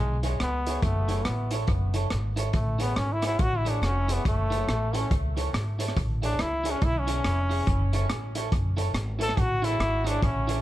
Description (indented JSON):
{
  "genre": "ska",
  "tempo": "140 BPM",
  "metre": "4/4",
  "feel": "swing 61% on 8ths",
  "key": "A major",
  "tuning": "A4 = 440 Hz",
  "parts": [
    { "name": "brilliant trombone", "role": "melody", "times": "0.0-10.6 s", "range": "G#3 to A4", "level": "-30 LUFS", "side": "equal", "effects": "tape echo" },
    { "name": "upright bass", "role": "bass", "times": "0.0-10.6 s", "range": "F1 to C#2", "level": "-28 LUFS", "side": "equal", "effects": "none" },
    { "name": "electric guitar at the edge of break-up", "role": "accompaniment", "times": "0.2-10.6 s", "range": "E4 to C#5", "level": "-35 LUFS", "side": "right 3 dB", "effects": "warbly pitch drift, tape echo" },
    { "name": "crunchy breakbeat drum kit", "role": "drums", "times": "0.2-10.6 s", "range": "hi-hat, kick drum, rim click", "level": "-30 LUFS", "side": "equal", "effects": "tape echo" }
  ],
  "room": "light reverb, small room ambience",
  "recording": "none",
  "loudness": "-24 LUFS",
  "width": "side -14 dB against mid",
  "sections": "0.0-10.6 A section",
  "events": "trombone solo 0.0-10.6",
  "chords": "0.0 Amaj7 (rootless); 0.8 F#m7; 2.5 Amaj7; 4.3 F#m7; 6.0 Amaj7; 7.7 F#m7; 9.4 Amaj7",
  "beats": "0.40 | 0.83 1.26 1.69 2.11 | 2.54 2.97 3.40 3.83 | 4.25 4.68 5.11 5.54 | 5.96 6.39 6.82 7.25 | 7.67 8.10 8.53 8.95 | 9.38 9.81 10.23"
}